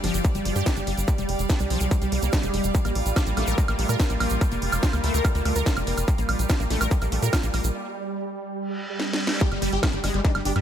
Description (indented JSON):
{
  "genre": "psychedelic trance",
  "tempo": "144 BPM",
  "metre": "4/4",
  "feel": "straight",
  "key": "unclear",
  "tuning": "A4 = 440 Hz",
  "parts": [
    { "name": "bubbling stepped-filter texture", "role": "sustained chords", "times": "0.0-10.6 s", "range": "G3", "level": "-31 LUFS", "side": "right 4 dB", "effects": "chorus, built-in reverb, sidechain pumping" },
    { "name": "wide unison pluck", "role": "riff", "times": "0.0-10.6 s", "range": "F3 to Bb4", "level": "-31 LUFS", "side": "moving between left 6 dB and right 5 dB", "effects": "auto-pan, sidechain pumping, digital delay" },
    { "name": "tight sequencer bass", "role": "bass", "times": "0.0-10.6 s", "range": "F1 to Bb2", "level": "-26 LUFS", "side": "equal", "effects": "tube saturation" },
    { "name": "techno drum kit", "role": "drums", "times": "0.0-10.6 s", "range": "hi-hat, snare drum, woodblock", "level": "-30 LUFS", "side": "right 1 dB", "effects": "overdrive" },
    { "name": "rich chamber string section", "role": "texture", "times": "0.0-7.7 s", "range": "F4 to F5", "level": "-34 LUFS", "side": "left 3 dB", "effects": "sidechain pumping" },
    { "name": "tube shaker", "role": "percussion", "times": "0.1-7.7 s", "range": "none", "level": "-37 LUFS", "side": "right 5 dB", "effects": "none" },
    { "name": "electronic kick drum", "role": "drums", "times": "0.2-10.3 s", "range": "none", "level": "-23 LUFS", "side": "equal", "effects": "distortion, overdrive" },
    { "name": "reverse cymbal and downlifter", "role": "sound effects", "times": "8.7-10.6 s", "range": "none", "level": "-33 LUFS", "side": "equal", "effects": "none" },
    { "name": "dense compressed supersaw", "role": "melody", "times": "9.4-10.6 s", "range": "G3 to G4", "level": "-30 LUFS", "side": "equal", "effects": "phaser, sidechain pumping, digital delay" }
  ],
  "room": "light reverb, digital ambience",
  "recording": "none",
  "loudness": "-22 LUFS",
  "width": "side -9 dB against mid",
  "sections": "0.0-9.4 A section; 9.4-10.6 B section",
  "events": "break 7.7-9.4; reverse cymbal 8.7-9.4; drum fill 9.0-9.4; band accent 9.3; drop 9.4-10.6",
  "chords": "0.0 G5; 2.7 Bb5; 9.4 G5"
}